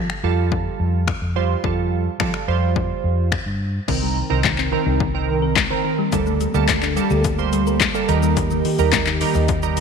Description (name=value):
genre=dance-pop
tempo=107 BPM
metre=4/4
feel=straight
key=unclear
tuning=A4 = 440 Hz
part: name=vintage muted fingered electric bass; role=bass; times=0.0-9.8 s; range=C2 to F3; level=-21 LUFS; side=equal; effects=sidechain pumping
part: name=punchy analog drum machine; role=drums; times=0.1-9.8 s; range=crash cymbal, finger snaps, handclaps, hi-hat, kick drum, shaker, snare drum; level=-22 LUFS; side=left 5 dB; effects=overdrive
part: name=glassy digital keys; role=accompaniment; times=0.2-9.8 s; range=Eb3 to C5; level=-23 LUFS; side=right 14 dB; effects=chorus, sidechain pumping
part: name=airy breathy pad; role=sustained chords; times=3.9-9.8 s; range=Eb3 to Bb4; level=-26 LUFS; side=equal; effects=chorus, sidechain pumping
part: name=thumb-piano-like synth pluck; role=arpeggios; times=3.9-9.8 s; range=Eb3 to Eb5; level=-26 LUFS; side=left 12 dB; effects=chorus, sidechain pumping, tape echo
room=light reverb, digital ambience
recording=1960s-style stereo with parts hard left and right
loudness=-17 LUFS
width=side -6 dB against mid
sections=0.0-3.9 A section; 3.9-9.8 B section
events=none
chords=0.0 Fadd9; 3.9 Cm7; 6.1 Gmadd9/D; 8.1 Eb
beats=0.52 1.08 | 1.64 2.20 2.76 3.32 | 3.88 4.44 5.00 5.57 | 6.12 6.69 7.25 7.81 | 8.37 8.93 9.49